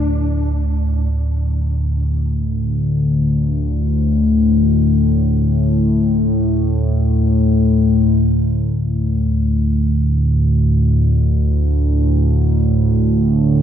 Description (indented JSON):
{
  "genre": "ambient",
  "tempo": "free time",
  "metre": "none",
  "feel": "none",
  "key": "unclear",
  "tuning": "A4 = 439 Hz",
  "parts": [
    { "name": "analog drone", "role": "drone", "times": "0.0-13.6 s", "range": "D2 to A2", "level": "-14 LUFS", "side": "equal", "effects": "chorus" }
  ],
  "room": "wet cathedral reverb, RT60 5.4 s",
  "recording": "none",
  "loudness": "-14 LUFS",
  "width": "side -9 dB against mid",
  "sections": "0.0-1.1 A section; 1.1-13.6 B section",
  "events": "none",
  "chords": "0.0 D5"
}